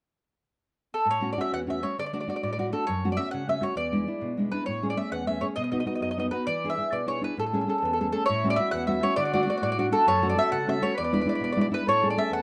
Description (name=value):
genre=italian folk, Italian serenade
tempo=133 BPM (dotted quarters)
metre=6/8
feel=straight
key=A major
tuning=A4 = 440 Hz
part: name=mandolin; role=melody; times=0.9-12.4 s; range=A4 to F#5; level=-29 LUFS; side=equal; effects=none
part: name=nylon-string guitar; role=accompaniment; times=1.1-12.4 s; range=E2 to G#4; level=-31 LUFS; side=equal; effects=none
part: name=mellow accordion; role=second line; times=8.3-12.4 s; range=E4 to B4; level=-33 LUFS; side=equal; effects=none
room=moderate studio reverb, RT60 0.7 s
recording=dark, warm production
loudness=-27 LUFS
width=mono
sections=1.1-8.3 A section; 8.3-12.4 A section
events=none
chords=0.2 N.C.; 1.1 A6; 2.0 D; 2.9 F#m; 3.8 E7; 4.7 Amaj7; 5.6 B; 6.5 E7; 7.4 Amaj7; 8.3 A6; 9.2 D; 10.1 F#m; 11.0 E7; 11.9 Amaj7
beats=| 0.15 0.60 | 1.06 1.51 | 1.96 2.41 | 2.86 3.31 | 3.76 4.21 | 4.67 5.12 | 5.57 6.02 | 6.47 6.92 | 7.37 7.82 | 8.28 8.73 | 9.17 9.62 | 10.06 10.51 | 10.96 11.41 | 11.86 12.30